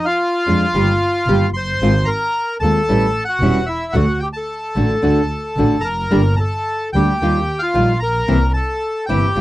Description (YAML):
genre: tango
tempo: 112 BPM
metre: 4/4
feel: rubato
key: unclear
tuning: A4 = 439 Hz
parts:
  - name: bandoneon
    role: melody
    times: 0.0-9.4 s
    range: E4 to C6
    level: -19 LUFS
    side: left 1 dB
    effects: none
  - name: nylon-string guitar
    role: accompaniment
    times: 0.5-9.4 s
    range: C3 to G4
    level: -17 LUFS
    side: equal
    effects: none
  - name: rich double bass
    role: bass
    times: 0.5-9.4 s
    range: E1 to F2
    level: -19 LUFS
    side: right 1 dB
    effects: none
room: little or no reverb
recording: dry, close 1970s-style studio recording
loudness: -15 LUFS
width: side -16 dB against mid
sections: 0.0-9.4 A section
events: none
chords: 0.0 Fm6; 0.7 Ebadd9/G; 1.8 Ab6; 2.9 A7; 4.0 D; 6.1 Gm; 7.2 Ebadd9; 8.3 C7